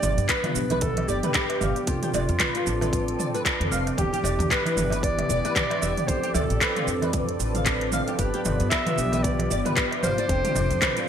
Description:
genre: organic downtempo.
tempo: 114 BPM.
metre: 4/4.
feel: swing 58% on 16ths.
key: G mixolydian.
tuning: A4 = 441 Hz.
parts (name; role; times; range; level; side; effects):
warm clarinet; melody; 0.0-11.1 s; F4 to E5; -29 LUFS; equal; digital delay.
muted felt-like synth keys; accompaniment; 0.0-11.1 s; E3 to A4; -33 LUFS; right 2 dB; chorus, sidechain pumping, ping-pong delay.
warm analog pad; sustained chords; 0.0-11.1 s; E3 to D5; -34 LUFS; left 1 dB; lush chorus, sidechain pumping.
flamenco guitar; arpeggios; 0.0-11.1 s; E4 to F5; -31 LUFS; equal; ensemble chorus, ping-pong delay.
upright bass; bass; 0.0-10.8 s; E1 to G2; -28 LUFS; equal; none.
organic electronic drum kit; drums; 0.0-11.1 s; handclaps, hi-hat, shaker, toms; -27 LUFS; equal; gated reverb.
darbuka; percussion; 0.0-10.7 s; none; -35 LUFS; right 4 dB; none.
wind-like tuned noise texture; texture; 1.0-11.1 s; D5; -39 LUFS; equal; built-in reverb, ensemble chorus.
electronic kick drum; drums; 0.3-10.9 s; none; -29 LUFS; equal; none.
room: moderate plate reverb, RT60 2.0 s, digital ambience.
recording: bright 1980s-style digital production.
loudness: -22 LUFS.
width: side -8 dB against mid.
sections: 0.0-11.1 A section.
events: none.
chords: 0.0 G7; 1.9 F6; 4.0 Em7; 6.1 Dm7; 8.2 G7; 10.3 F6.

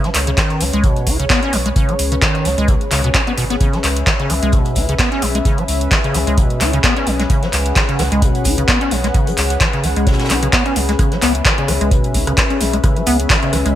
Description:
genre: acid house.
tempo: 130 BPM.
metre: 4/4.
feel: swing 56% on 16ths.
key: C# minor.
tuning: A4 = 438 Hz.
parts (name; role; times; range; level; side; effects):
warm analog pad; sustained chords; 0.0-13.8 s; C#4 to F#5; -22 LUFS; left 2 dB; chorus, sidechain pumping.
acid bass, square; riff; 0.0-13.8 s; B2 to E4; -20 LUFS; equal; analog chorus, ping-pong delay.
booming analog drum machine; drums; 0.0-13.7 s; handclaps, hi-hat, rim click; -19 LUFS; equal; gated reverb.
vintage brush drum kit; drums; 0.0-13.8 s; hi-hat, snare drum; -30 LUFS; left 1 dB; none.
round analog bass; bass; 0.1-13.8 s; G#1 to C#2; -20 LUFS; equal; sidechain pumping.
electronic kick drum; drums; 0.4-13.4 s; none; -17 LUFS; equal; none.
room: light reverb.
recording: bright 1980s-style digital production.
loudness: -13 LUFS.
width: side -12 dB against mid.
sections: 0.0-13.8 A section.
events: none.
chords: 0.0 C#m7.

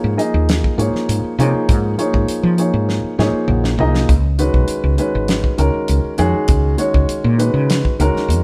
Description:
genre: electric jazz fusion.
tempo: 100 BPM.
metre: 4/4.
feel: straight.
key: unclear.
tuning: A4 = 440 Hz.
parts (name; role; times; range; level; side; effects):
dark grand piano; accompaniment; 0.0-8.4 s; Eb3 to Bb5; -21 LUFS; equal; none.
woody fretless electric bass; bass; 0.0-8.4 s; Ab1 to F3; -19 LUFS; equal; none.
damped 70s drum kit; drums; 0.2-8.4 s; hi-hat, kick drum, snare drum, toms; -21 LUFS; equal; none.
room: light reverb.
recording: band playing live in one room.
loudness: -16 LUFS.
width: mono.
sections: 0.0-8.4 A section.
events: drum fill 2.9-4.1; grand piano fill 2.9-4.1.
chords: 0.0 Absus4; 4.1 Db9sus4.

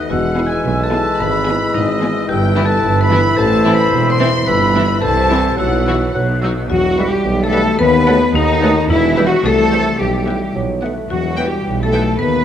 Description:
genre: cinematic, playful, whimsical film cue.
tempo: 109 BPM.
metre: 2/4.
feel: straight.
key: E minor.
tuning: A4 = 439 Hz.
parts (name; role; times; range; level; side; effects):
marimba with hard mallets; melody; 0.0-12.4 s; D#4 to C5; -22 LUFS; left 6 dB; none.
rich chamber violin section; melody; 0.0-12.0 s; E4 to G5; -29 LUFS; left 4 dB; none.
clear clarinet; second line; 0.0-12.0 s; B4 to C5; -28 LUFS; right 1 dB; none.
mellow hollow concert flute; second line; 0.0-12.4 s; D#5 to F#6; -24 LUFS; left 1 dB; none.
rich chamber violin section; second line; 0.0-12.0 s; B4 to C6; -26 LUFS; left 2 dB; none.
warm oboe; second line; 0.0-12.0 s; D#5 to C6; -22 LUFS; equal; none.
mellow bassoon; accompaniment; 0.0-12.0 s; E3 to A3; -24 LUFS; right 2 dB; none.
rich chamber viola section; accompaniment; 0.0-12.0 s; E3 to E4; -24 LUFS; right 2 dB; none.
concert harp; arpeggios; 0.0-12.4 s; G2 to E6; -24 LUFS; left 7 dB; none.
clear tuba; bass; 0.1-12.4 s; E1 to D#2; -22 LUFS; right 3 dB; none.
rich studio double bass section; bass; 0.1-12.4 s; E1 to E2; -22 LUFS; right 3 dB; none.
rich symphonic cello section; bass; 0.1-12.4 s; E2 to B4; -21 LUFS; right 2 dB; none.
warm French horn section; sustained chords; 0.4-12.4 s; D#3 to E4; -21 LUFS; left 3 dB; none.
room: moderate scoring stage reverb, RT60 1.9 s.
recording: none.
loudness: -12 LUFS.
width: side -9 dB against mid.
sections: 0.0-6.7 A section; 6.7-12.4 B section.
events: none.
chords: 0.1 E; 1.2 E/G#; 2.3 Em/G; 3.4 Am; 4.5 Em/G; 5.0 Am/C; 5.6 Bsus4; 6.1 B; 6.7 Em; 7.8 B7/D#; 8.9 Em; 9.4 C; 10.0 Em/B; 10.6 B; 11.1 Em.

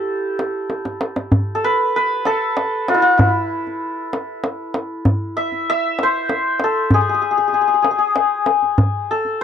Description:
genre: Persian modal ensemble.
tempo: 64 BPM (dotted quarters).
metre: 6/8.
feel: straight.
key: A avaz esfahan.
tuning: A4 = 439 Hz.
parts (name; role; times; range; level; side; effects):
santur; melody; 0.0-9.4 s; E4 to E5; -17 LUFS; left 2 dB; none.
tombak; percussion; 0.4-9.3 s; none; -18 LUFS; equal; none.
room: little or no reverb.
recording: dry, close 1970s-style studio recording.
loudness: -16 LUFS.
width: side -8 dB against mid.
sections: 0.0-1.3 A section; 1.3-9.4 B section.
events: drum fill 0.7-1.3.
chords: none.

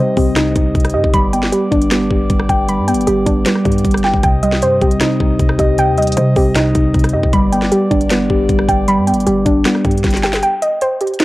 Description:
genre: hip hop, trap.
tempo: 155 BPM.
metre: 4/4.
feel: half-time.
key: C harmonic minor.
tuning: A4 = 439 Hz.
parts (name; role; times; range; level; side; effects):
muted felt-like synth keys; accompaniment; 0.0-10.4 s; C3 to G5; -16 LUFS; equal; chorus, phaser.
mellow brass ensemble; sustained chords; 0.0-10.4 s; B3 to Eb5; -25 LUFS; left 1 dB; none.
soft round pluck; arpeggios; 0.0-11.2 s; B3 to B5; -17 LUFS; right 1 dB; chorus, analog delay.
hard-hitting 808-style bass; bass; 0.0-10.4 s; G1 to C3; -21 LUFS; equal; none.
trap drum kit; drums; 0.2-11.2 s; finger snaps, hi-hat, kick drum, rim click, snare drum; -17 LUFS; equal; none.
room: light reverb.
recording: home recording on cassette.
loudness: -12 LUFS.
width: side -18 dB against mid.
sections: 0.0-10.4 A section.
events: drum fill 10.0-10.4; kick muted 10.4-11.2.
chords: 0.0 Cm; 1.1 G; 4.2 Cm; 7.3 G; 10.4 Cm.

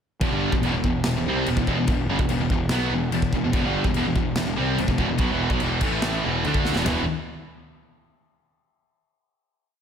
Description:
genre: heavy metal.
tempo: 144 BPM.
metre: 4/4.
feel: straight.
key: E minor.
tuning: A4 = 440 Hz.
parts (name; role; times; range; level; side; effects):
distorted electric guitar; riff; 0.2-7.0 s; E2 to D4; -27 LUFS; right 9 dB; overdrive, slapback echo.
overdriven semi-hollow guitar; riff; 0.2-7.0 s; E2 to D4; -28 LUFS; left 1 dB; none.
scooped high-gain guitar; riff; 0.2-7.0 s; E2 to D4; -28 LUFS; left 8 dB; distortion.
fuzz picked electric bass; bass; 0.2-7.1 s; E1 to D2; -29 LUFS; equal; overdrive.
modern studio drum kit; drums; 0.2-7.0 s; crash cymbal, kick drum, ride cymbal, snare drum, toms; -26 LUFS; equal; none.
room: moderate scoring stage reverb, RT60 1.7 s, small room ambience.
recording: big arena sound.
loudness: -21 LUFS.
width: side -8 dB against mid.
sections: 0.2-6.9 riff; 6.9-8.5 final chord.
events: drum fill 6.7.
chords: 0.2 Em; 5.8 A5; 6.2 E5.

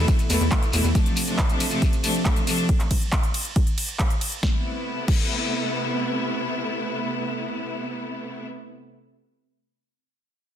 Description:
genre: uplifting trance.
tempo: 138 BPM.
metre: 4/4.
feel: straight.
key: A minor.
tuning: A4 = 440 Hz.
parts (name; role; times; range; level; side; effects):
bright studio string section; sustained chords; 0.0-8.5 s; B2 to E4; -26 LUFS; equal; sidechain pumping.
tight sequencer bass; bass; 0.0-0.9 s; E2; -21 LUFS; equal; sidechain pumping.
big-room dance drum kit; drums; 0.1-5.2 s; crash cymbal, handclaps, hi-hat, ride cymbal, snare drum; -28 LUFS; equal; overdrive.
electronic kick drum; drums; 0.1-5.2 s; none; -22 LUFS; equal; none.
shekere; percussion; 0.1-2.7 s; none; -33 LUFS; left 3 dB; none.
room: light reverb, digital ambience.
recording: dense, heavily limited modern master.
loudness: -21 LUFS.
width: side -10 dB against mid.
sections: 0.0-4.4 A section; 4.4-7.9 B section.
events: drop 0.0-4.4.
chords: 0.0 Esus4; 1.0 Dm7; 4.4 Amadd9.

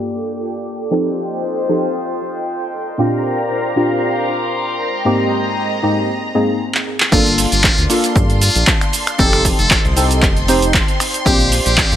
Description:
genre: deep house.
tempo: 116 BPM.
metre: 4/4.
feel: swing 54% on 16ths.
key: G minor.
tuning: A4 = 440 Hz.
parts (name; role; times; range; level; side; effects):
airy breathy pad; sustained chords; 0.0-12.0 s; Ab3 to A5; -24 LUFS; equal; chorus, phaser, sidechain pumping.
deep mellow chord stab; stabs; 0.0-12.0 s; G2 to C5; -19 LUFS; equal; chorus, cassette tape, tape echo.
rich studio string section; texture; 0.0-6.6 s; Ab3 to D6; -25 LUFS; left 2 dB; sidechain pumping.
string machine, violins; texture; 3.0-12.0 s; Bb5 to C6; -26 LUFS; equal; ensemble chorus.
punchy analog drum machine; drums; 6.7-12.0 s; crash cymbal, finger snaps, handclaps, hi-hat, shaker; -17 LUFS; right 1 dB; overdrive.
trumpet with metal mute; melody; 7.1-12.0 s; F4 to A4; -19 LUFS; equal; none.
round analog bass; bass; 7.1-12.0 s; F1 to G2; -18 LUFS; equal; sidechain pumping.
electronic kick drum; drums; 7.1-11.9 s; none; -16 LUFS; equal; overdrive.
jazz brush drum kit; drums; 7.1-12.0 s; hi-hat, snare drum; -30 LUFS; right 2 dB; none.
room: moderate lush hall reverb, RT60 2.1 s.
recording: low-pass filter.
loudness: -13 LUFS.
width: side -10 dB against mid.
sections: 0.0-7.1 A section; 7.1-12.0 B section.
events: filter sweep 0.0-7.1; drum fill 6.7-7.1; drop 7.1-12.0.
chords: 0.0 Gm7; 0.9 F9; 2.7 Bb69; 4.8 Abmaj9; 7.1 Gm7; 9.2 F9; 11.0 Bb69.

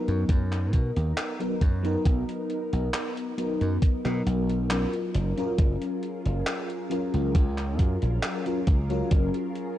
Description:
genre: vaporwave.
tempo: 68 BPM.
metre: 4/4.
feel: straight.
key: F# major.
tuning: A4 = 440 Hz.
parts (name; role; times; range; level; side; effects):
FM electric piano with soft pad layer; accompaniment; 0.0-9.8 s; F#3 to A#4; -30 LUFS; left 1 dB; tremolo, analog chorus, tape echo.
soft string machine; sustained chords; 0.0-9.8 s; F#3 to A#4; -36 LUFS; left 1 dB; phaser, ensemble chorus.
slap bass; bass; 0.1-9.3 s; F#1 to B2; -26 LUFS; equal; tube saturation.
gated 80s digital drum machine; drums; 0.1-9.7 s; handclaps, hi-hat; -34 LUFS; equal; gated reverb, overdrive.
electronic kick drum; drums; 0.3-9.3 s; none; -21 LUFS; equal; overdrive.
room: little or no reverb.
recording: dark, warm production, cassette tape.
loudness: -24 LUFS.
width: side -13 dB against mid.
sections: 0.0-9.8 A section.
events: none.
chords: 0.0 Bmaj7; 5.1 F#maj7.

